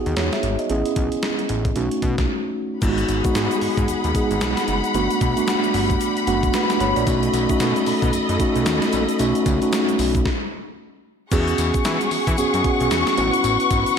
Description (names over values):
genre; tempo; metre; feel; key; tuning
R&B, new jack swing; 113 BPM; 4/4; swing 60% on 16ths; E major; A4 = 440 Hz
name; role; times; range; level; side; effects
mellow tine electric piano; accompaniment; 0.0-14.0 s; G#3 to B5; -21 LUFS; right 1 dB; medium stereo tremolo
fat analog bass; bass; 0.1-13.8 s; F#1 to E3; -25 LUFS; equal; none
clean 12-bit digital drum machine; drums; 0.1-14.0 s; crash cymbal, hi-hat, kick drum, snare drum, tambourine; -24 LUFS; equal; none
warm studio string section; sustained chords; 2.8-14.0 s; G3 to C#6; -24 LUFS; left 4 dB; none
egg shaker; percussion; 2.8-14.0 s; none; -40 LUFS; left 12 dB; none
room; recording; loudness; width
moderate concert hall reverb, RT60 1.7 s; big arena sound; -18 LUFS; side -7 dB against mid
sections
0.0-2.8 A section; 2.8-11.3 B section; 11.3-14.0 C section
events
break 2.3-2.8; tine electric piano fill 6.0-7.1; stop 10.3-11.3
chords
0.0 Emaj7; 0.7 Amaj9; 1.8 B7; 2.8 G#m7; 4.9 Gmaj7; 7.1 B7; 11.3 E69; 13.2 A69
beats
0.17 | 0.70 1.23 1.76 2.29 | 2.82 3.35 3.88 4.41 | 4.94 5.47 6.01 6.54 | 7.07 7.60 8.13 8.66 | 9.19 9.72 10.25 10.79 | 11.32 11.85 12.38 12.91 | 13.44 13.97